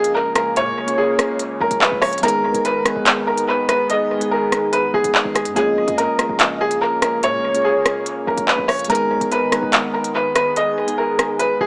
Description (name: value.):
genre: hip hop, drill.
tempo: 144 BPM.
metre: 4/4.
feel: half-time.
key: Bb phrygian.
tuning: A4 = 440 Hz.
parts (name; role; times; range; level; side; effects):
clear upright piano; melody; 0.0-11.7 s; Ab4 to Eb5; -18 LUFS; equal; low-pass filter, dub echo.
gliding portamento lead; second line; 0.0-11.7 s; Ab4 to Eb5; -25 LUFS; equal; chorus, dub echo.
soft electric-piano-like synth keys; accompaniment; 0.0-11.7 s; Ab3 to Ab4; -25 LUFS; equal; chorus, low-pass filter, dub echo.
sweeping resonant pad; sustained chords; 0.0-11.7 s; Db3 to Cb4; -29 LUFS; equal; chorus, tremolo.
hard-hitting 808-style bass; bass; 0.0-11.7 s; Gb1 to Bb2; -34 LUFS; equal; none.
drill drum kit; drums; 0.0-11.5 s; handclaps, hi-hat, rim click; -20 LUFS; equal; dub echo.
room: light reverb, digital ambience.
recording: echo-heavy mix, vinyl crackle, small speaker sound.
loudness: -15 LUFS.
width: side -35 dB against mid.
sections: 0.0-11.7 A section.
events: none.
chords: 0.0 Bbm7; 2.2 Abm; 5.6 Bbm7; 8.9 Abm.